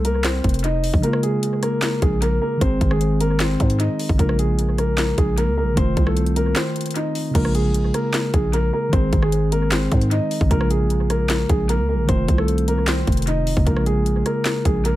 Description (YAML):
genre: hip hop, trap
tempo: 152 BPM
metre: 4/4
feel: half-time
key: Bb minor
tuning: A4 = 440 Hz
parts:
  - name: dark grand piano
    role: melody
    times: 0.0-15.0 s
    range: Ab3 to Eb5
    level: -24 LUFS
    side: equal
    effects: low-pass filter, analog delay
  - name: growling 808-style bass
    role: bass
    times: 0.0-15.0 s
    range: F1 to Ab2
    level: -21 LUFS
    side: equal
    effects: none
  - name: trap drum kit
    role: drums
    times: 0.0-14.9 s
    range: crash cymbal, handclaps, hi-hat, kick drum, rim click, snare drum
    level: -22 LUFS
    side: equal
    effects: analog delay
  - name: mellow tine electric piano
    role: accompaniment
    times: 1.0-15.0 s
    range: Db3 to Ab4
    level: -24 LUFS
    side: equal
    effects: low-pass filter, analog delay
room: little or no reverb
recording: echo-heavy mix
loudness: -17 LUFS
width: side -15 dB against mid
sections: 0.0-7.3 A section; 7.3-15.0 A section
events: kick muted 1.0-1.4; break 6.6-7.3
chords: 0.0 F7(no3); 1.0 Bbm7; 2.6 Ab; 4.2 Bbm7; 5.8 F7; 7.3 Bbm7; 8.9 Ab; 10.5 Bbm7; 12.1 F7; 13.7 Bbm7